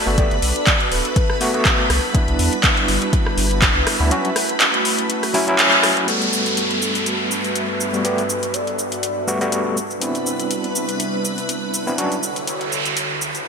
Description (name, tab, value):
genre	deep house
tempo	122 BPM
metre	4/4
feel	swing 55% on 16ths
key	G major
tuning	A4 = 442 Hz
part	warm velvety synth lead	melody	0.0-1.4, 6.1-9.8 s	A4 to D5	-27 LUFS	equal	chorus, ping-pong delay
part	airy breathy pad	sustained chords	0.0-13.4 s	G2 to C#5	-28 LUFS	right 2 dB	chorus, sidechain pumping
part	overdriven tine electric piano	stabs	0.0-12.2 s	F#3 to G4	-23 LUFS	equal	fast tremolo, sidechain pumping, low-pass filter, digital delay
part	granular cloud pad	texture	0.0-13.5 s	D3 to A5	-29 LUFS	left 1 dB	built-in reverb, lush chorus, sidechain pumping
part	string machine, violins	texture	0.0-6.1, 10.0-13.5 s	B4 to B5	-29 LUFS	equal	ensemble chorus, sidechain pumping
part	round analog bass	bass	0.1-4.1 s	D1 to E2	-21 LUFS	equal	sidechain pumping
part	deep house drum kit	drums	0.2-13.4 s	cabasa, handclaps, hi-hat, rim click	-20 LUFS	equal	overdrive, gated reverb
part	electronic kick drum	drums	0.2-3.7 s	none	-19 LUFS	equal	overdrive
part	downlifter and noise sweep	sound effects	6.1-13.5 s	none	-24 LUFS	right 1 dB	none
room	moderate lush hall reverb, RT60 2.1 s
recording	bright 1980s-style digital production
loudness	-16 LUFS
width	side -6 dB against mid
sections	0.0-6.1 A section; 6.1-13.5 B section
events	band accent 5.6; filter sweep on tine electric piano 6.1-13.5; noise sweep 12.2-13.5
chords	0.0 Gmaj9; 1.9 Cmaj9 (rootless); 4.1 A69/F#; 6.1 Gmaj9; 9.8 Cmaj9; 12.0 Dmaj9